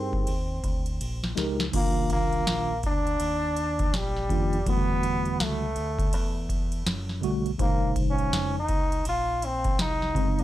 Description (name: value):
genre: hip hop, jazz-hop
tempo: 82 BPM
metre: 4/4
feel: swing 61% on 16ths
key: unclear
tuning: A4 = 440 Hz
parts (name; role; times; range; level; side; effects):
- bright trombone; melody; 0.0-10.4 s; G3 to F4; -29 LUFS; equal; tape echo
- mellow tine electric piano; accompaniment; 0.0-10.4 s; Db3 to C5; -28 LUFS; equal; medium stereo tremolo
- deep dub fingered electric bass; bass; 0.0-10.4 s; F#1 to G2; -33 LUFS; equal; none
- booming analog drum machine; drums; 0.1-10.4 s; crash cymbal, hi-hat, kick drum, ride cymbal, snare drum; -28 LUFS; equal; overdrive
room: light reverb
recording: dry, gritty hardware recording, transformer saturation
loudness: -24 LUFS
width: side -14 dB against mid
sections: 0.0-1.7 A section; 1.7-10.4 B section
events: drum fill 1.0-1.7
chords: 0.0 Fm11 (rootless); 1.7 Cm11; 4.7 Em11; 7.6 Bbm11